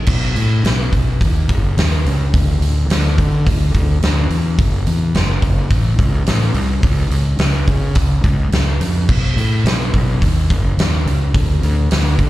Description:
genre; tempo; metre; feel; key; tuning
quiet-loud alternative rock; 106 BPM; 4/4; straight; unclear; A4 = 441 Hz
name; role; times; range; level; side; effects
fuzz fingered electric bass; bass; 0.1-12.3 s; F#1 to D3; -16 LUFS; equal; overdrive
huge arena drum kit; drums; 0.1-12.3 s; crash cymbal, hi-hat, kick drum, snare drum; -17 LUFS; equal; none
room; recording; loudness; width
little or no reverb; live gig heard through the venue's PA, club reverb; -13 LUFS; side -16 dB against mid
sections
0.1-12.3 A section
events
none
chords
none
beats
| 0.07 0.64 1.21 1.77 | 2.33 2.90 3.46 4.02 | 4.59 5.15 5.71 6.27 | 6.84 7.40 7.96 8.52 | 9.09 9.65 10.21 10.78 | 11.34 11.91

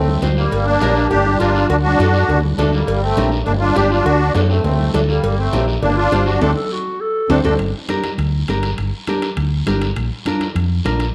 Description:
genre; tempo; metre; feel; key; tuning
latin, cumbia; 203 BPM; 4/4; straight; G harmonic minor, G minor from 7.6 s; A4 = 441 Hz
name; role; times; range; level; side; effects
musette accordion; melody; 0.0-7.5 s; G3 to G4; -20 LUFS; equal; none
hollow-body short-scale fingered electric bass; bass; 0.0-11.1 s; G1 to F#2; -20 LUFS; equal; none
congas; percussion; 0.1-11.0 s; none; -28 LUFS; equal; none
nylon-string guitar; accompaniment; 0.2-11.1 s; D4 to C5; -25 LUFS; equal; none
cowbell and timbales; percussion; 0.2-11.1 s; none; -30 LUFS; equal; none
guiro; percussion; 0.2-11.1 s; none; -35 LUFS; equal; none
growling clarinet; second line; 6.6-7.6 s; F#4 to C5; -24 LUFS; equal; none
room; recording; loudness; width
moderate large studio reverb, RT60 1.2 s; dark, warm production; -17 LUFS; mono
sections
0.0-7.6 A section; 7.6-11.1 B section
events
band accent 6.4-7.6; drum fill 6.9-7.6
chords
0.0 D7; 0.5 Gm; 1.7 D; 2.9 Gm; 4.1 D7; 5.2 Gm; 6.4 D7; 7.6 Gm; 10.0 Bb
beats
0.22 | 0.52 0.81 1.11 1.40 | 1.70 1.99 2.29 2.58 | 2.88 3.17 3.47 3.76 | 4.06 4.35 4.65 4.94 | 5.24 5.53 5.83 6.12 | 6.42 6.71 7.01 7.30 | 7.60 7.89 8.19 8.48 | 8.78 9.08 9.37 9.67 | 9.96 10.26 10.55 10.85 | 11.15

